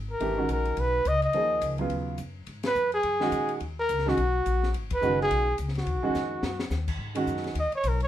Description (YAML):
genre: modal jazz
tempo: 212 BPM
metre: 4/4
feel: swing 59% on 8ths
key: G# dorian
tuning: A4 = 438 Hz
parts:
  - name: upright bass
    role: bass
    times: 0.0-8.1 s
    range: F#1 to A#2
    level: -31 LUFS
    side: left 1 dB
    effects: none
  - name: mellow trumpet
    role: melody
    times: 0.1-8.1 s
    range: F#4 to D#5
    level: -26 LUFS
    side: equal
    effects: none
  - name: warm upright piano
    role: accompaniment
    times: 0.2-7.5 s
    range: C#3 to G#4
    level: -30 LUFS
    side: right 3 dB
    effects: none
  - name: compact cocktail drum kit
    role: drums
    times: 0.2-8.1 s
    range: crash cymbal, hi-hat, kick drum, ride cymbal, snare drum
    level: -38 LUFS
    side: left 2 dB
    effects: none
room: moderate studio reverb, RT60 0.6 s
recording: minimal, uncompressed stereo recording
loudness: -25 LUFS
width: side -12 dB against mid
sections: 0.0-7.0 A section; 7.0-8.1 B section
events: band accent 2.6, 4.9; drum fill 6.1-6.7; trumpet solo 7.0-8.1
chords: 0.2 B/G#; 2.5 G#m9; 4.7 B; 7.0 G#m7